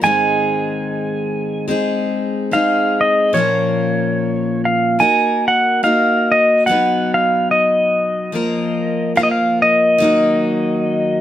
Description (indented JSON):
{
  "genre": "folk",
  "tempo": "72 BPM",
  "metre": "4/4",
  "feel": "swing 57% on 8ths",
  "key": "unclear",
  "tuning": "A4 = 440 Hz",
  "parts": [
    { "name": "pedal steel guitar", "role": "melody", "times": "0.0-11.2 s", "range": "Db5 to Ab5", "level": "-15 LUFS", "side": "equal", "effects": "none" },
    { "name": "picked steel-string acoustic guitar", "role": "accompaniment", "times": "0.0-11.2 s", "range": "Ab2 to Cb5", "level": "-18 LUFS", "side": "left 2 dB", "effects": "none" }
  ],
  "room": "moderate studio reverb, RT60 0.6 s",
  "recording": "none",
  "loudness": "-14 LUFS",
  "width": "side -11 dB against mid",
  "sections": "0.0-3.3 A section; 3.3-11.2 B section",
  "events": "none",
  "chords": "0.0 Ab; 3.3 Bbm; 5.0 Ebm/Bb; 6.7 Cb; 8.3 Bb5; 10.0 Ebm"
}